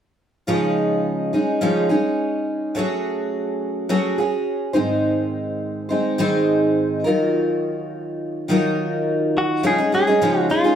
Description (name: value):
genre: pop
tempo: 105 BPM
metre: 4/4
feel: straight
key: Db major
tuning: A4 = 440 Hz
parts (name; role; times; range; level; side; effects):
- picked twelve-string acoustic guitar; accompaniment; 0.5-10.8 s; Ab2 to C5; -19 LUFS; equal; none
- direct-recorded clean electric guitar; melody; 9.4-10.8 s; F4 to Ab4; -19 LUFS; left 1 dB; none
room: wet studio reverb, RT60 0.5 s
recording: heard from further back in the room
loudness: -18 LUFS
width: side -9 dB against mid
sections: 0.5-9.6 A section; 9.6-10.8 B section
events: none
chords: 0.5 Dbadd9; 2.8 Gbmadd9; 4.8 Ab; 7.1 Ebmadd9; 9.6 Dbadd9